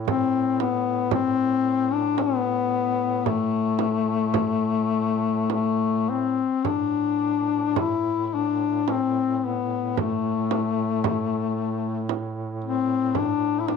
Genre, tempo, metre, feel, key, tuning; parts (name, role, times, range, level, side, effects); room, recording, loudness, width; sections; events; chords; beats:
caucasian folk, Caucasian lament; 50-58 BPM; 3/4; rubato; A minor; A4 = 443 Hz
warm duduk; drone; 0.0-13.8 s; A2; -32 LUFS; right 4 dB; stereo widening
mellow duduk; melody; 0.1-13.8 s; A3 to E4; -22 LUFS; left 7 dB; slapback echo
frame drum; percussion; 0.1-13.8 s; -28 LUFS; right 13 dB
moderate spring reverb, RT60 1.4 s, small room ambience; 1960s-style stereo with parts hard left and right; -22 LUFS; side -6 dB against mid
0.0-6.6 A section; 6.6-13.8 B section
| 0.08 1.12 2.19 | 3.26 4.34 5.50 | 6.65 7.76 8.88 | 9.97 11.04 12.09 | 13.15